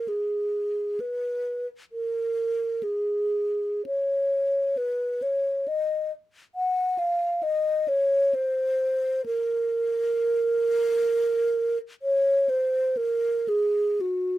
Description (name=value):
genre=classical, free, expressive piece for unaccompanied alto flute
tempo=54-69 BPM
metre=3/4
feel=rubato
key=unclear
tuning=A4 = 438 Hz
part: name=mellow hollow wooden-headed alto flute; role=solo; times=0.0-14.4 s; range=Gb4 to Gb5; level=-23 LUFS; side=equal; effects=none
room=little or no reverb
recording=close, detailed microphones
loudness=-23 LUFS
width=side -15 dB against mid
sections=0.0-14.4 A section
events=none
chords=none